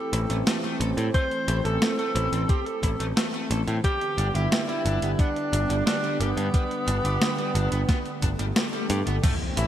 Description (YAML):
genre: synthwave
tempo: 89 BPM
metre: 4/4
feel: straight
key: unclear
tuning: A4 = 443 Hz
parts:
  - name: warm alto saxophone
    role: melody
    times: 0.0-9.7 s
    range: B3 to C5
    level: -29 LUFS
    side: right 1 dB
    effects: digital delay
  - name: warm analog pad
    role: sustained chords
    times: 0.0-9.7 s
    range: D3 to A4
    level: -31 LUFS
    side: right 1 dB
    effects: lush chorus, sidechain pumping
  - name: biting overdriven guitar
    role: riff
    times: 0.1-9.7 s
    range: G3 to A4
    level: -36 LUFS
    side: left 2 dB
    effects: wide subtle chorus, digital delay
  - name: modern bright picked electric bass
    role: bass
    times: 0.1-9.7 s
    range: G1 to A2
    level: -26 LUFS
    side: equal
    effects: tube saturation, sidechain pumping
  - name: clean 12-bit digital drum machine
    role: drums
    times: 0.1-9.7 s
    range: crash cymbal, hi-hat, snare drum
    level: -28 LUFS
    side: equal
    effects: overdrive, gated reverb
  - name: electronic kick drum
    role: drums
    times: 1.1-9.4 s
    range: none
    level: -23 LUFS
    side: equal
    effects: overdrive
  - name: swell and impact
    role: sound effects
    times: 8.2-9.7 s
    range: none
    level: -32 LUFS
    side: left 2 dB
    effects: none
room: moderate lush hall reverb, RT60 2.0 s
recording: bright 1980s-style digital production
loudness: -22 LUFS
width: side -11 dB against mid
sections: 0.0-9.2 A section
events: swell 8.2-9.2; kick drops out 8.6-9.2; impact 9.2-9.7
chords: 0.0 Am7; 3.8 G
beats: 0.47 | 1.14 1.82 2.49 3.17 | 3.84 4.51 5.19 5.86 | 6.54 7.21 7.89 8.56 | 9.23